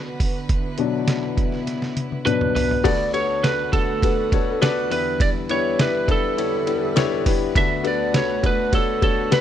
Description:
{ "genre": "piano-driven pop", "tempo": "102 BPM", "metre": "4/4", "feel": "straight", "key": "D major", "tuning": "A4 = 440 Hz", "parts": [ { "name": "warm grand piano", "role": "accompaniment", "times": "0.0-9.4 s", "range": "D2 to D5", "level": "-24 LUFS", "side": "left 10 dB", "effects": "none" }, { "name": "warm chamber string section", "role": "sustained chords", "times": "0.0-9.4 s", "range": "D3 to B4", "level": "-30 LUFS", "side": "right 5 dB", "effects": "none" }, { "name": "lo-fi sampler-style drum kit", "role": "drums", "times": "0.2-9.4 s", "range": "crash cymbal, hi-hat, kick drum, ride cymbal, snare drum, toms", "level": "-22 LUFS", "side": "right 1 dB", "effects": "none" }, { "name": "lightly driven lead guitar", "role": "melody", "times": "2.3-9.4 s", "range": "A4 to E5", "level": "-22 LUFS", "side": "right 3 dB", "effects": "none" } ], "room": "little or no reverb", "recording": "dry, close 1970s-style studio recording", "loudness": "-18 LUFS", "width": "side -10 dB against mid", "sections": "0.0-2.8 A section; 2.8-9.4 B section", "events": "grand piano solo 0.0-2.8; drum fill 1.7-2.8", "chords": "0.0 Bm; 2.8 D6; 4.9 Em7; 7.6 D6" }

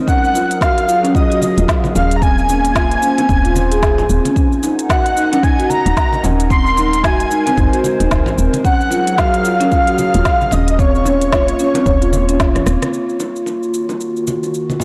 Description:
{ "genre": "organic downtempo", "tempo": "112 BPM", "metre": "4/4", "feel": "swing 59% on 16ths", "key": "Eb dorian", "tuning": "A4 = 440 Hz", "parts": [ { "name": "warbly tape-like pad", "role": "sustained chords", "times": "0.0-14.8 s", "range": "Eb3 to Gb5", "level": "-25 LUFS", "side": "equal", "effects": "chorus, built-in reverb, sidechain pumping" }, { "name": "marimba with soft mallets", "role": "arpeggios", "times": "0.0-12.9 s", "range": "C4 to Ab4", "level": "-21 LUFS", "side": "equal", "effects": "vintage 12-bit sampler grit, tape echo" }, { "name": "breathy flute-like synth lead", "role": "melody", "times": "0.1-12.7 s", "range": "Db5 to C6", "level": "-20 LUFS", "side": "equal", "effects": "ensemble chorus, tape echo" }, { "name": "electronic kick drum", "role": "drums", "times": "0.1-12.5 s", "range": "none", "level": "-19 LUFS", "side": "equal", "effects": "none" }, { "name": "organic electronic drum kit", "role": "drums", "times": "0.1-14.8 s", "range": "hi-hat, rim click, shaker, snare drum", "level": "-26 LUFS", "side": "equal", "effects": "none" }, { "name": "bongos and congas", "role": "percussion", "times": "0.3-14.8 s", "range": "none", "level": "-28 LUFS", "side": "equal", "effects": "none" }, { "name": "woody FM bass", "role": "bass", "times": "1.6-12.8 s", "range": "Eb1 to Gb1", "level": "-19 LUFS", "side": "equal", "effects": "transformer saturation" } ], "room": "light reverb", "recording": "blown-out, overdriven recording, overdrive", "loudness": "-15 LUFS", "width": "mono", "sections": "0.0-12.9 A section; 12.9-14.8 B section", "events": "drum fill 12.5-12.9", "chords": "0.1 Gbmaj7; 2.2 Bbm9/Eb; 4.4 Ebm7; 6.5 Ab7/Eb; 8.6 Gbmaj7; 10.8 Bbm9/Eb; 12.9 Ebm7" }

